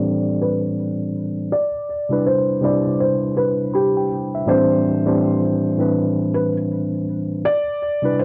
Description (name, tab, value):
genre	lo-fi hip hop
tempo	81 BPM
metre	4/4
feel	swing 57% on 16ths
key	unclear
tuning	A4 = 439 Hz
part	tine electric piano	accompaniment	0.0-8.2 s	A2 to B5	-21 LUFS	equal	low-pass filter
part	felt-muted upright piano	melody	0.4-8.2 s	G4 to D5	-23 LUFS	equal	low-pass filter, analog delay
room	moderate small room reverb, RT60 0.5 s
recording	dry, gritty hardware recording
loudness	-20 LUFS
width	mono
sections	0.0-8.2 A section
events	filter sweep 0.0-8.2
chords	0.0 Am7; 1.5 Cmaj9; 4.5 Am11; 7.4 Cmaj9